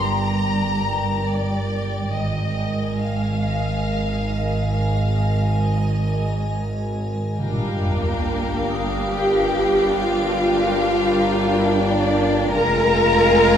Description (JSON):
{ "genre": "cinematic, suspense film score", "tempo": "70 BPM", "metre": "3/4", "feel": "straight", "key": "G phrygian", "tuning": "A4 = 440 Hz", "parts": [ { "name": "rich studio violin section", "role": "melody", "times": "0.0-13.6 s", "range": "Bb4 to Bb5", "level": "-27 LUFS", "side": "left 4 dB", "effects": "none" }, { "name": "icy glass pad", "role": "sustained chords", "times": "0.0-13.6 s", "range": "Ab4 to Ab5", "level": "-29 LUFS", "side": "right 1 dB", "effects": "chorus, built-in reverb" }, { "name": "warm studio cello section", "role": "bass", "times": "0.0-13.6 s", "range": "G2 to Bb4", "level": "-23 LUFS", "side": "equal", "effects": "none" }, { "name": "warm studio double bass section", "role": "bass", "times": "0.0-13.6 s", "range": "F1 to Ab1", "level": "-28 LUFS", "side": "right 4 dB", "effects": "none" }, { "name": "analog drone", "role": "drone", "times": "0.0-13.6 s", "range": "G1 to F2", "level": "-26 LUFS", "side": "right 1 dB", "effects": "chorus" }, { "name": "vibraphone with medium mallets", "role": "texture", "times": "0.0-2.2, 8.7-13.6 s", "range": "Bb4 to Eb6", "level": "-35 LUFS", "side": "left 3 dB", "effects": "none" }, { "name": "rich studio violin section", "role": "second line", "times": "7.4-13.6 s", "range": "F5 to Ab5", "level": "-27 LUFS", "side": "left 2 dB", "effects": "none" }, { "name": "rich studio viola section", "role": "accompaniment", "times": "7.4-13.6 s", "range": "G3 to F4", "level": "-26 LUFS", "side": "right 1 dB", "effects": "none" }, { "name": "mellow French horn section", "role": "sustained chords", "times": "7.4-13.6 s", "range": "G3 to F4", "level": "-25 LUFS", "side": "left 2 dB", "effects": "none" }, { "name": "sub drop", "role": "sound effects", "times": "7.4-10.0 s", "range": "none", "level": "-27 LUFS", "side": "equal", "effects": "none" } ], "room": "wet recital hall reverb, RT60 1.4 s", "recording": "recorded in a church or concert hall", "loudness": "-18 LUFS", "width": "side -8 dB against mid", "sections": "0.0-7.4 A section; 7.4-13.6 B section", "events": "impact 7.4-10.0", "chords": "0.0 Gm; 2.1 Absus2; 7.4 Gm7; 12.5 Fm", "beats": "0.45 1.29 | 2.13 2.98 3.85 | 4.73 5.63 6.52 | 7.39 8.25 9.12 | 9.97 10.81 11.65 | 12.51 13.35" }